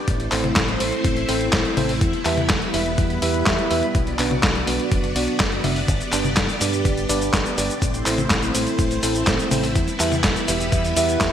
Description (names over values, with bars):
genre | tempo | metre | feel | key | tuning
italo disco | 124 BPM | 4/4 | straight | unclear | A4 = 440 Hz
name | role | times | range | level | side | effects
string machine, full ensemble | sustained chords | 0.0-11.3 s | G3 to D5 | -25 LUFS | equal | ensemble chorus
fingered electric bass with an envelope filter | bass | 0.1-11.3 s | E1 to G2 | -27 LUFS | equal | tube saturation
dusty soul sampler-style drum kit | drums | 0.1-11.3 s | cabasa, handclaps, hi-hat, snare drum, toms | -23 LUFS | left 1 dB | overdrive, gated reverb
electronic kick drum | drums | 0.1-11.3 s | none | -24 LUFS | equal | overdrive
mellow tine electric piano | stabs | 0.3-11.3 s | B3 to E5 | -25 LUFS | right 2 dB | wide subtle chorus, digital delay
room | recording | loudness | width
moderate lush hall reverb, RT60 1.9 s | bright 1980s-style digital production | -18 LUFS | side -9 dB against mid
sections
0.0-11.3 A section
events
none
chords
0.1 Am; 2.0 Em; 3.9 Bm; 5.9 G; 7.8 Am; 9.8 Em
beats
| 0.08 0.56 1.04 1.53 | 2.01 2.50 2.98 3.46 | 3.95 4.43 4.92 5.40 | 5.88 6.37 6.85 7.33 | 7.82 8.30 8.79 9.27 | 9.76 10.24 10.72 11.21